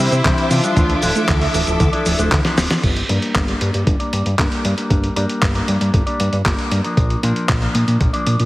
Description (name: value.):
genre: italo disco.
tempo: 116 BPM.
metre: 4/4.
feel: straight.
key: G dorian.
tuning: A4 = 440 Hz.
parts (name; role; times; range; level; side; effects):
dark studio violin section; melody; 0.0-1.3 s; C4 to F4; -22 LUFS; equal; digital delay.
phased string machine; sustained chords; 0.0-2.8 s; A4 to D6; -23 LUFS; equal; ensemble chorus, phaser.
warbly dusty pluck; arpeggios; 0.0-2.8 s; E3 to C4; -24 LUFS; right 1 dB; chorus, digital delay.
electric guitar with an envelope filter; stabs; 0.0-8.4 s; E3 to E5; -23 LUFS; left 1 dB; low-pass filter.
fat analog bass; bass; 0.0-8.5 s; D1 to C3; -19 LUFS; equal; none.
dusty soul sampler-style drum kit; drums; 0.1-8.5 s; cabasa, crash cymbal, handclaps, hi-hat, snare drum; -22 LUFS; equal; none.
electronic kick drum; drums; 0.2-8.1 s; none; -19 LUFS; equal; none.
room: moderate lush hall reverb, RT60 1.9 s, digital ambience.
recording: heavily compressed radio sound, multiband compression, vinyl crackle.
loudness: -15 LUFS.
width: side -18 dB against mid.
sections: 0.0-2.8 A section; 2.8-8.5 B section.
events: drum fill 2.4-2.8; filter sweep on clean electric guitar 2.8-8.5.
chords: 0.0 Cadd9; 0.8 Dmadd9; 2.8 Gm; 7.0 Bb.